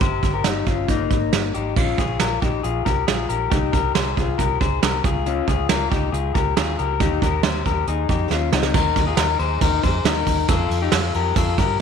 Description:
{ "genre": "jangly indie pop", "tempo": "138 BPM", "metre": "4/4", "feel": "straight", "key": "unclear", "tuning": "A4 = 436 Hz", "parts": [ { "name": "electric guitar through a small old amp", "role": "arpeggios", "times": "0.0-11.8 s", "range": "Bb3 to C5", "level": "-22 LUFS", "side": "left 10 dB", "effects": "none" }, { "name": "vintage muted fingered electric bass", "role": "bass", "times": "0.0-11.8 s", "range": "G1 to G2", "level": "-25 LUFS", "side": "equal", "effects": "none" }, { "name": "soft brush drum kit", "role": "drums", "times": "0.0-11.7 s", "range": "crash cymbal, hi-hat, kick drum, ride cymbal, snare drum", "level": "-21 LUFS", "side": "right 4 dB", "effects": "none" } ], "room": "moderate echo chamber reverb, RT60 1.6 s, studio reverb", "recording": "1960s-style stereo", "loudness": "-18 LUFS", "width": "side -7 dB against mid", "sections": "0.0-1.8 A section; 1.8-8.7 B section; 8.7-11.8 C section", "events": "drum fill 8.3-8.7", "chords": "0.0 Eb7; 1.8 Bbm7; 3.5 Fm11/C; 5.0 Db6; 7.0 Eb7; 8.7 Ebsus4; 10.5 F" }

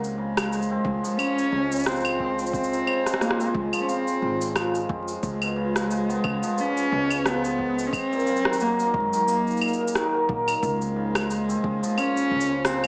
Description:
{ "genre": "folktronica", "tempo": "89 BPM", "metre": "4/4", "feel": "swing 56% on 16ths", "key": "Db major", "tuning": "A4 = 444 Hz", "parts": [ { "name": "dark cello", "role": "melody", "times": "0.0-12.9 s", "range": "Ab3 to Db4", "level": "-28 LUFS", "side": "equal", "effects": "none" }, { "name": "cimbalom", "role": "arpeggios", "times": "0.0-12.9 s", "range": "Bb2 to C4", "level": "-30 LUFS", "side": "equal", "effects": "none" }, { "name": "upright bass", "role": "bass", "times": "0.0-12.9 s", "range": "Ab1 to Bb2", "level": "-37 LUFS", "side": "equal", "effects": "none" }, { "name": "electronic cabasa, rim click and claves", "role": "drums", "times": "0.0-12.9 s", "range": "none", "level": "-31 LUFS", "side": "equal", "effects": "none" }, { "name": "warbly tape-like pad", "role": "sustained chords", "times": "1.6-12.9 s", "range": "Gb3 to C5", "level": "-35 LUFS", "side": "equal", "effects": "chorus, built-in reverb" }, { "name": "electronic kick drum", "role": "drums", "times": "0.8-11.8 s", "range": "none", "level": "-37 LUFS", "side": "equal", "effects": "overdrive" } ], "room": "light reverb, small room ambience", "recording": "vinyl crackle, small speaker sound", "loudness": "-25 LUFS", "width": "mono", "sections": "0.0-12.9 A section", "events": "none", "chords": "0.0 Dbmaj7; 5.2 Db7; 7.9 Gb6; 10.6 Dbmaj7" }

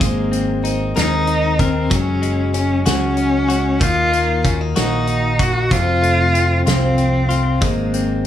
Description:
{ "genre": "six-eight pop ballad", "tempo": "63 BPM (dotted quarters)", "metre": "6/8", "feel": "straight", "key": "unclear", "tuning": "A4 = 440 Hz", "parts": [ { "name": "warm cello", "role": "melody", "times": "0.0-8.3 s", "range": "Bb3 to Gb4", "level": "-19 LUFS", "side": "left 1 dB", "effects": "none" }, { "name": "direct-recorded clean electric guitar", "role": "accompaniment", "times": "0.0-8.3 s", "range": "F2 to Bb4", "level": "-23 LUFS", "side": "left 7 dB", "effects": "none" }, { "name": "picked steel-string acoustic guitar", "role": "arpeggios", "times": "0.0-8.3 s", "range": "F2 to Bb4", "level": "-26 LUFS", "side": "right 5 dB", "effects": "none" }, { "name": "fingered electric bass", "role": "bass", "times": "0.0-8.3 s", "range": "F1 to Eb2", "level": "-20 LUFS", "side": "equal", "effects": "none" }, { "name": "loose indie drum kit", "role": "drums", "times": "0.0-8.1 s", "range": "hi-hat, kick drum, snare drum", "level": "-21 LUFS", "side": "equal", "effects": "none" } ], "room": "little or no reverb", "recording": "studio ambience", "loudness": "-15 LUFS", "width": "side -11 dB against mid", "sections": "0.0-8.3 A section", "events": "none", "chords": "0.0 Abadd9; 1.9 Gbsus2; 3.8 Ebm; 5.7 F; 7.6 Abadd9" }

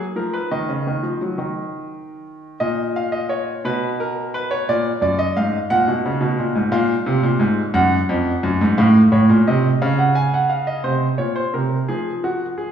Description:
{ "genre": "classical, baroque-style two-part invention for grand piano", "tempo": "58 BPM (dotted quarters)", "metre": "6/8", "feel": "straight", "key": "unclear", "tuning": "A4 = 440 Hz", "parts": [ { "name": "clear concert grand piano", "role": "solo", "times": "0.0-12.7 s", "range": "F2 to Ab5", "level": "-17 LUFS", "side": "right 1 dB", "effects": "none" } ], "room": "wet recital hall reverb, RT60 1.7 s", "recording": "recorded in a church or concert hall, small room reverb", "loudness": "-17 LUFS", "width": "side -8 dB against mid", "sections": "0.0-2.6 A section; 2.6-10.8 B section; 10.8-12.7 A section", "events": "none", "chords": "0.0 Bb5; 0.5 N.C.; 2.6 Eb5/Bb; 3.7 Bsus2; 4.7 Bb; 5.7 Abm11; 6.7 Bb5; 7.7 Gbsus2; 8.8 F/A; 9.8 Dbadd11; 10.8 Bbmadd9; 11.9 Fm" }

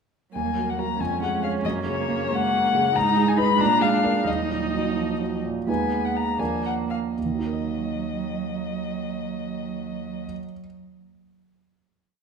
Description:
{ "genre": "quick classical-period movement for piano quartet", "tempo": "75-95 BPM (dotted quarters)", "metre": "6/8", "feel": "rubato", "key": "Eb minor", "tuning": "A4 = 440 Hz", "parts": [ { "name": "muted violin", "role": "melody", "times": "0.3-10.3 s", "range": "Db5 to Cb6", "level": "-26 LUFS", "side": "left 6 dB", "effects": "none" }, { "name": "muted cello", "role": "second line", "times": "0.3-10.3 s", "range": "Gb3 to Cb4", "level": "-32 LUFS", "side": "right 6 dB", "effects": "none" }, { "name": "muted viola", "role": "accompaniment", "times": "0.3-5.4 s", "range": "Bb3 to Eb4", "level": "-30 LUFS", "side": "right 1 dB", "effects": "none" }, { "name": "warm concert grand piano", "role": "accompaniment", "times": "0.4-10.6 s", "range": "Eb2 to Eb5", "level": "-26 LUFS", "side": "right 3 dB", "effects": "none" } ], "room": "wet recital hall reverb, RT60 1.7 s", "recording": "minimal, uncompressed stereo recording", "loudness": "-22 LUFS", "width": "side -6 dB against mid", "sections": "0.3-5.7 A section; 5.7-7.2 coda; 7.2-10.2 final chord", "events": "slowing down 3.6-7.2", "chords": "0.3 Ebm; 1.0 Db/F; 1.6 Gb; 3.0 Abm; 3.6 Bb7; 4.3 Ebm; 5.7 Abm/Eb; 6.4 Bb/Eb; 7.2 Ebm" }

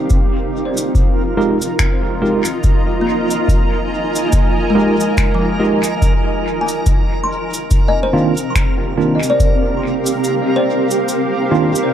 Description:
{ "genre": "ambient dub", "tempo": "71 BPM", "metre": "4/4", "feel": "swing 58% on 16ths", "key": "F dorian", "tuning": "A4 = 440 Hz", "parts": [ { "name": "granular cloud pad", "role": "sustained chords", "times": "0.0-11.9 s", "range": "C4 to Bb5", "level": "-19 LUFS", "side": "right 1 dB", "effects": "built-in reverb" }, { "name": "kalimba", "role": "arpeggios", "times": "0.0-11.9 s", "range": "F3 to C6", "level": "-22 LUFS", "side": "left 3 dB", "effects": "low-pass filter, tape echo" }, { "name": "cabasa and finger snaps", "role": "drums", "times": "0.1-11.9 s", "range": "none", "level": "-24 LUFS", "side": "equal", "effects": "dub echo" }, { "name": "electronic kick drum", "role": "drums", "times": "0.1-9.6 s", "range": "none", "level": "-16 LUFS", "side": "equal", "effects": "none" }, { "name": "backwards swelling texture", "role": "texture", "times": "0.8-11.9 s", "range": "Bb4", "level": "-25 LUFS", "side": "right 5 dB", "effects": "built-in reverb" }, { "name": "tine electric piano", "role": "stabs", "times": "1.4-11.7 s", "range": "Eb3 to Bb4", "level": "-18 LUFS", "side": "right 2 dB", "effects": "medium stereo tremolo, dub echo" } ], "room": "light reverb", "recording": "echo-heavy mix", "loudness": "-13 LUFS", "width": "side -10 dB against mid", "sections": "0.0-11.9 A section", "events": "filter sweep on tine electric piano 0.0-11.9; kick drops out 10.2-11.9", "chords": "0.1 Fm11; 6.9 Cm11" }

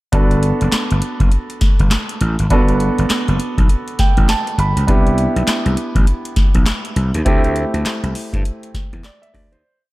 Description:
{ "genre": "R&B, new jack swing", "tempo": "101 BPM", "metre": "4/4", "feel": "swing 61% on 16ths", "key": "G major", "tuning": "A4 = 439 Hz", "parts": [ { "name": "clear concert grand piano", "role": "accompaniment", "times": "0.1-9.8 s", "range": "A3 to B5", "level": "-20 LUFS", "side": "right 2 dB", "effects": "none" }, { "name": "gritty slap bass", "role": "bass", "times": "0.1-9.6 s", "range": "F#1 to G2", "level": "-17 LUFS", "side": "equal", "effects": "overdrive" }, { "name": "booming analog drum machine", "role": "drums", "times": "0.1-9.6 s", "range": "handclaps, hi-hat, kick drum, snare drum", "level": "-16 LUFS", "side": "equal", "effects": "none" }, { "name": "group handclap", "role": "percussion", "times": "5.5-9.2 s", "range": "none", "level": "-34 LUFS", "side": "left 6 dB", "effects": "none" } ], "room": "light reverb, digital ambience", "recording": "dark, warm production", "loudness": "-14 LUFS", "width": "side -19 dB against mid", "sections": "0.1-9.6 verse", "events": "grand piano fill 3.7-4.9; fade-out 7.3-9.6", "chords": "0.1 Gmaj9; 4.9 Cmaj9; 7.3 D9sus4" }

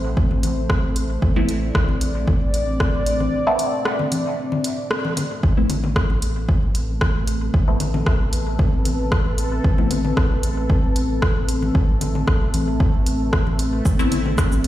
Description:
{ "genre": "dub techno", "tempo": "114 BPM", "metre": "4/4", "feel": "straight", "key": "A minor", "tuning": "A4 = 439 Hz", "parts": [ { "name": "dark analog pad", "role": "sustained chords", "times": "0.0-14.7 s", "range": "A3 to D5", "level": "-26 LUFS", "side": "equal", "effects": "chorus, sidechain pumping" }, { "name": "warm sub bass", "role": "bass", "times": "0.0-14.7 s", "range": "A1 to B1", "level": "-24 LUFS", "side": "equal", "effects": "sidechain pumping" }, { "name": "electronic kick drum", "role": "drums", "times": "0.2-14.5 s", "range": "none", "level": "-19 LUFS", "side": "equal", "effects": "studio reverb" }, { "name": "congas", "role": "percussion", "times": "0.3-14.6 s", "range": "none", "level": "-29 LUFS", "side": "left 3 dB", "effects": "sidechain pumping on perc, studio reverb, dub echo" }, { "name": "punchy analog drum machine", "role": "drums", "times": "0.4-14.7 s", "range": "cabasa, hi-hat, rim click", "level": "-27 LUFS", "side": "equal", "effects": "overdrive, studio reverb, dub echo" }, { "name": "filtered dub chord stab", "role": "stabs", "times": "1.4-10.0, 14.0-14.2 s", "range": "A3 to E4", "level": "-26 LUFS", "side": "left 1 dB", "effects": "phaser, sidechain pumping, dub echo" }, { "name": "bubbling stepped-filter texture", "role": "texture", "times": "5.9-14.7 s", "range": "A3 to A4", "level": "-32 LUFS", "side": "left 1 dB", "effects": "chorus, built-in reverb, sidechain pumping" } ], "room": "light reverb, digital ambience", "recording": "played on a big sound system in a bare room, stone room reverb", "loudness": "-18 LUFS", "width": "side -14 dB against mid", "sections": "0.0-5.4 A section; 5.4-14.7 A section", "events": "band accent 4.9", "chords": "0.0 Am; 5.4 Amadd9" }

